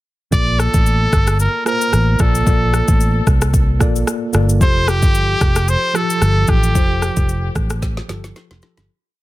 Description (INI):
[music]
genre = afrobeats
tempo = 112 BPM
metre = 4/4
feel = swing 55% on 16ths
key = Bb major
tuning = A4 = 440 Hz
[part]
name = bright trumpet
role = melody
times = 0.3-7.6 s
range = G4 to D5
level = -20 LUFS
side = equal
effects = ping-pong delay
[part]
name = tine electric piano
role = accompaniment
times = 0.3-8.9 s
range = F3 to D5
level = -24 LUFS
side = equal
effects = medium stereo tremolo
[part]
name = fingered electric bass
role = bass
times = 0.3-8.9 s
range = F1 to C2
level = -17 LUFS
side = equal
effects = none
[part]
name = afro-pop drum kit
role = drums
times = 0.3-8.9 s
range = kick drum, rim click, shaker, snare drum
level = -17 LUFS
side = equal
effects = soft clipping on snare
[sound]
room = little or no reverb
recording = dense, heavily limited modern master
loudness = -13 LUFS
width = side -17 dB against mid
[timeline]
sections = 0.3-8.9 verse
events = fade-out 6.8-8.9; drum fill 7.8-8.9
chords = 0.3 Bbmaj7; 4.6 Fadd9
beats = | 0.33 0.86 1.40 1.93 | 2.47 3.00 3.54 4.08 | 4.61 5.15 5.68 6.22 | 6.75 7.29 7.83 8.36